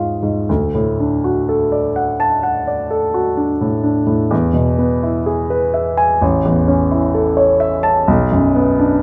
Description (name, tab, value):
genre	classical, romantic character piece for solo piano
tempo	63 BPM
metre	4/4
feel	rubato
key	unclear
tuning	A4 = 440 Hz
part	warm grand piano	solo	0.0-9.0 s	A1 to C#6	-16 LUFS	equal	none
room	wet large studio reverb, RT60 0.9 s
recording	heard from further back in the room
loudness	-16 LUFS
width	mono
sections	0.0-9.0 A section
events	none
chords	0.5 D; 4.3 E; 6.2 A; 8.1 Bm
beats	| 0.48 1.48 2.44 3.38 | 4.32 5.26 6.22 7.14 | 8.07